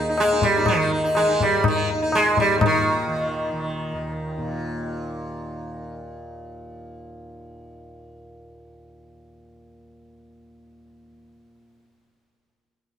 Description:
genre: indian classical, Hindustani.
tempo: 124 BPM.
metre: 4/4.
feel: straight.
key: unclear.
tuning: A4 = 441 Hz.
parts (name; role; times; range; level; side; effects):
sitar; melody; 0.0-6.0 s; Eb3 to Eb4; -21 LUFS; right 1 dB; none.
tanpura; drone; 0.0-11.5 s; Eb2 to Eb3; -33 LUFS; equal; none.
tabla; percussion; 0.2-2.8 s; none; -24 LUFS; left 3 dB; none.
room: wet stone room reverb, RT60 1.2 s.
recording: band playing live in one room.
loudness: -20 LUFS.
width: side -9 dB against mid.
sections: 0.0-2.6 A section; 2.6-4.5 B section.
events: speeding up 0.0-4.5.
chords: none.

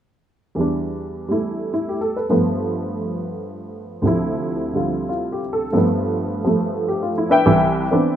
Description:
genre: solo jazz.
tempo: 139 BPM.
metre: 4/4.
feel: swing 68% on 8ths, rubato.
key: unclear.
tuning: A4 = 438 Hz.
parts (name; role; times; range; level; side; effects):
honky-tonk upright piano; solo; 0.6-8.2 s; C2 to G5; -18 LUFS; equal; none.
room: light reverb.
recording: minimal, uncompressed stereo recording.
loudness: -18 LUFS.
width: side -10 dB against mid.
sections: 0.6-7.5 A section.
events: none.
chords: 0.6 Em7; 2.3 G9; 4.0 Dm9; 5.7 G9; 7.5 Cmaj9.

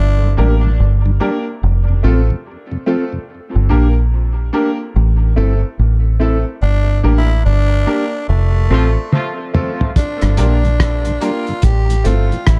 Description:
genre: dub reggae.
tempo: 72 BPM.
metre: 4/4.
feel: swing 63% on 16ths.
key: G dorian.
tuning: A4 = 440 Hz.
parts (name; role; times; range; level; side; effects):
growling tenor saxophone; melody; 0.0-0.4, 6.6-12.6 s; A3 to G4; -26 LUFS; equal; dub echo.
deep dub fingered electric bass; bass; 0.0-12.6 s; F1 to Bb1; -15 LUFS; equal; none.
mellow tonewheel organ; accompaniment; 0.2-3.2, 10.2-12.4 s; F2 to E4; -28 LUFS; equal; slow rotary speaker, dub echo.
mellow electric guitar; accompaniment; 0.4-9.7 s; C4 to Bb4; -26 LUFS; equal; dub echo.
clear grand piano; stabs; 0.4-12.3 s; A3 to Bb4; -26 LUFS; equal; dub echo.
mellow horn section; second line; 8.7-9.9 s; F3 to F4; -29 LUFS; equal; dub echo.
cloth-damped thuddy drum kit; drums; 9.1-12.6 s; hi-hat, kick drum, rim click, toms; -18 LUFS; equal; none.
room: small room ambience.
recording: dark, warm production.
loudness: -15 LUFS.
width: mono.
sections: 0.0-12.6 A section.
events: break 0.0-6.6; band accent 6.6-10.0; drum fill 9.1-10.0.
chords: 0.0 Gm; 1.6 F; 3.3 Gm; 5.0 Am; 6.6 Gm; 8.3 F; 10.0 Gm; 11.6 Am.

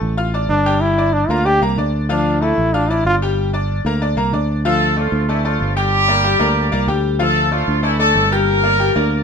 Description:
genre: latin.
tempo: 188 BPM.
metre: 4/4.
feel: straight.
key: D minor.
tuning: A4 = 440 Hz.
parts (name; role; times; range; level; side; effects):
bright concert grand piano; accompaniment; 0.0-9.2 s; F3 to F6; -21 LUFS; left 2 dB; none.
fingered electric bass; bass; 0.0-9.2 s; G1 to D2; -19 LUFS; right 1 dB; none.
bright trombone; melody; 0.5-3.2 s; D4 to G4; -17 LUFS; equal; none.
warm horn section; melody; 4.6-9.2 s; E3 to Bb4; -17 LUFS; equal; none.
room: light reverb.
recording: minimal, uncompressed stereo recording.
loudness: -14 LUFS.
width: side -6 dB against mid.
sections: 0.0-4.6 A section; 4.6-9.2 B section.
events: trombone solo 0.0-4.6.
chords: 0.0 Dm; 0.8 Gm; 2.1 Dm; 3.4 Gm; 4.6 Dm; 5.9 Gm; 7.2 Dm; 8.5 Gm.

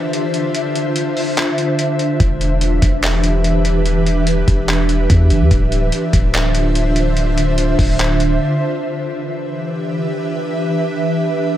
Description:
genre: hip hop, atmospheric cloud-rap.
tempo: 145 BPM.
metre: 4/4.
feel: half-time.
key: unclear.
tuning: A4 = 440 Hz.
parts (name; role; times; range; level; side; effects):
ethereal airy pad; sustained chords; 0.0-11.6 s; D3 to E5; -17 LUFS; equal; ensemble chorus, built-in reverb, sidechain pumping.
lo-fi sampler-style drum kit; drums; 0.1-8.3 s; handclaps, hi-hat, kick drum; -18 LUFS; equal; none.
long sustained 808-style bass; bass; 2.2-8.4 s; D1 to E2; -16 LUFS; equal; none.
room: light reverb, digital ambience.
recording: none.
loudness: -14 LUFS.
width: side -12 dB against mid.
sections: 0.0-8.8 A section; 8.8-11.6 B section.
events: break 0.0-2.2, 8.4-8.8.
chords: 0.0 Dm7; 2.2 Em7; 5.5 Dm7; 8.8 Em7.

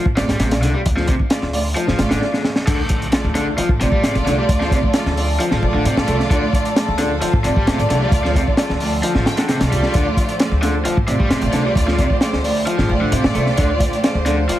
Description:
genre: breakbeat, breaks.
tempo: 132 BPM.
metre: 4/4.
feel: straight.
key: D minor pentatonic.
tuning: A4 = 440 Hz.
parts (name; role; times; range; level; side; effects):
overdriven electric guitar; riff; 0.0-14.6 s; C3 to A3; -23 LUFS; left 1 dB; ping-pong delay.
upright bass; bass; 0.1-14.5 s; A1 to A2; -21 LUFS; equal; tube saturation.
crunchy breakbeat drum kit; drums; 0.1-14.6 s; crash cymbal, hi-hat, kick drum, snare drum; -19 LUFS; equal; none.
warm studio string section; stabs; 0.2-14.3 s; A3 to G5; -22 LUFS; right 2 dB; vintage 12-bit sampler grit, ping-pong delay.
rich chamber string section; sustained chords; 2.7-14.6 s; D3 to C5; -27 LUFS; left 2 dB; sidechain pumping.
impact; sound effects; 2.7-4.5 s; none; -28 LUFS; equal; none.
room: light reverb, small room ambience.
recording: heavily compressed radio sound, multiband compression.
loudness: -15 LUFS.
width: side -13 dB against mid.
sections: 0.0-2.7 A section; 2.7-14.6 B section.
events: drum fill 2.2-2.7; drop 2.7-14.6; impact 2.7-4.5.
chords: 0.0 Dm.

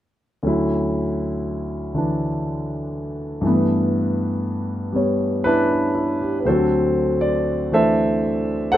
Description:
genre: solo jazz.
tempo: 79 BPM.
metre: 4/4.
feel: swing 69% on 8ths, rubato.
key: D major.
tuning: A4 = 441 Hz.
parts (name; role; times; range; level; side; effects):
warm grand piano; solo; 0.4-8.8 s; D2 to F#5; -18 LUFS; equal; none.
room: light reverb.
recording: none.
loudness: -19 LUFS.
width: side -12 dB against mid.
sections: 0.4-6.5 A section; 6.5-8.8 B section.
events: none.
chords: 0.4 Dmaj9; 3.4 G69; 6.5 D7.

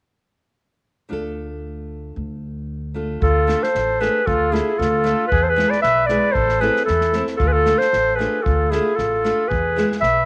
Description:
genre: balkan folk, Balkan wedding band.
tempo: 114 BPM.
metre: 2/4.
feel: swing 55% on 16ths.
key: D dorian sharp4.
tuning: A4 = 441 Hz.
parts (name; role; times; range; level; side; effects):
nylon-string guitar; accompaniment; 1.1-10.0 s; G#3 to A4; -28 LUFS; equal; none.
upright bass; bass; 1.1-10.3 s; A1 to E2; -27 LUFS; equal; none.
warm clarinet; melody; 3.2-10.3 s; G#4 to E5; -20 LUFS; equal; none.
mellow trumpet; second line; 3.2-10.3 s; E4 to B4; -28 LUFS; equal; none.
unplugged drum kit; percussion; 3.2-10.1 s; kick drum, snare drum; -31 LUFS; equal; none.
room: light reverb.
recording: none.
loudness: -19 LUFS.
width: mono.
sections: 1.1-3.2 A section; 3.2-10.3 B section.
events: none.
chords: 1.1 Dm; 5.3 E; 6.4 Am; 7.4 Dm; 9.5 E.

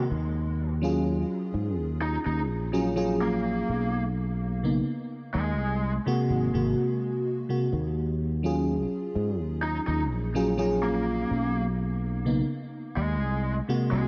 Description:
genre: vaporwave.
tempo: 63 BPM.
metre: 4/4.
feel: straight.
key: Eb minor.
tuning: A4 = 439 Hz.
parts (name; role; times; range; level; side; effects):
FM electric piano with soft pad layer; accompaniment; 0.0-14.1 s; C3 to Ab4; -30 LUFS; equal; subtle chorus, analog delay.
sustaining fretless electric bass; bass; 0.1-14.1 s; Ab1 to Ab2; -31 LUFS; equal; tube saturation, analog chorus.
lead guitar through a small cranked amp; melody; 2.0-14.1 s; Ab3 to Eb4; -35 LUFS; equal; overdrive, tape echo.
room: moderate lush hall reverb, RT60 2.9 s.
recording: dark, warm production, cassette tape.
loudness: -28 LUFS.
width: mono.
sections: 0.0-14.1 A section.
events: none.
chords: 0.1 Ebm11; 3.9 B; 5.8 Ab9; 7.7 Ebm11; 11.5 B; 13.4 Ab9/C.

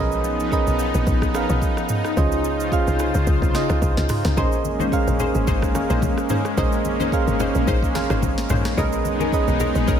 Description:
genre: amapiano.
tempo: 109 BPM.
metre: 4/4.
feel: swing 55% on 16ths.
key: Bb minor.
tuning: A4 = 440 Hz.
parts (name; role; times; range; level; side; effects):
soft electric-piano-like synth keys; accompaniment; 0.0-10.0 s; C#4 to F5; -24 LUFS; right 5 dB; chorus.
lush unison pad; sustained chords; 0.0-10.0 s; Db3 to C5; -25 LUFS; left 3 dB; chorus, tremolo, sidechain pumping.
tight log drum bass; bass; 0.0-10.0 s; Ab1 to Db2; -23 LUFS; equal; none.
afro-pop drum kit; drums; 0.1-10.0 s; hi-hat, kick drum, rim click, shaker, snare drum, toms; -24 LUFS; equal; none.
punchy chord stab; stabs; 4.4-10.0 s; Db4 to C5; -28 LUFS; left 3 dB; chorus, phaser, analog delay.
congas; percussion; 4.4-9.7 s; none; -30 LUFS; left 5 dB; none.
room: light reverb, digital ambience.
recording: none.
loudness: -18 LUFS.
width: side -8 dB against mid.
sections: 0.0-10.0 A section.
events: none.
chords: 0.0 Bmaj13; 2.2 Dbmaj9; 4.4 Bbm11; 8.8 Bmaj13.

